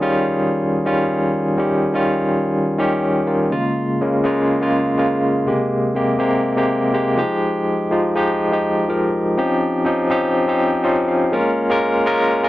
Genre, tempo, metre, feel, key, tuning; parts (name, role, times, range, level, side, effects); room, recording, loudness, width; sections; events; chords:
disco; 123 BPM; 4/4; straight; Bb dorian; A4 = 440 Hz
barky tine electric piano; solo; 0.0-12.5 s; C3 to F5; -16 LUFS; equal; medium tremolo
light reverb; dry, close 1970s-style studio recording; -16 LUFS; side -15 dB against mid
0.0-3.5 A section; 3.5-11.3 B section; 11.3-12.5 C section
tine electric piano fill 10.6-11.3
0.0 Eb9; 3.5 Bbm7; 5.5 Abmaj9; 7.2 Fm9; 9.4 Eb13; 11.3 Bbm7